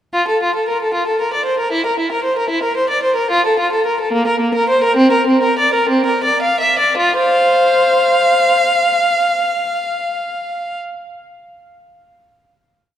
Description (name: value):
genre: classical, baroque-style suite movement for unaccompanied violin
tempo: 54-77 BPM (dotted quarters)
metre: 6/8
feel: rubato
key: F major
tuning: A4 = 440 Hz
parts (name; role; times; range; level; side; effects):
- rich violin; solo; 0.1-10.8 s; Bb3 to F5; -13 LUFS; equal; none
room: wet church reverb, RT60 2.9 s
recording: dark, warm production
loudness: -13 LUFS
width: side -10 dB against mid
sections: 0.1-7.0 A section; 7.0-11.3 final chord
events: slowing down 2.5-7.0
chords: 0.1 F; 1.7 C7/E; 3.3 F; 4.1 Bbsus2; 5.0 C7(no3); 7.0 F5